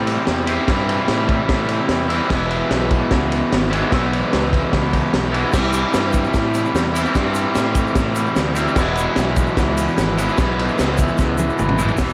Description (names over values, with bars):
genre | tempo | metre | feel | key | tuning
garage rock duo or trio | 148 BPM | 4/4 | straight | E major | A4 = 440 Hz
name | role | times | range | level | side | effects
raw garage guitar | riff | 0.0-12.1 s | E2 to E4 | -22 LUFS | equal | overdrive
fuzz picked electric bass | bass | 0.0-12.1 s | E1 to A2 | -25 LUFS | equal | overdrive
vintage drum kit | drums | 0.1-12.1 s | crash cymbal, hi-hat, kick drum, ride cymbal, snare drum, toms | -23 LUFS | equal | none
tube shaker | percussion | 5.5-12.1 s | none | -39 LUFS | equal | none
room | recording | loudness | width
light reverb | none | -18 LUFS | mono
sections
0.0-12.0 A section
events
drum fill 11.2-12.0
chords
0.0 C; 2.3 E; 5.5 C; 8.8 E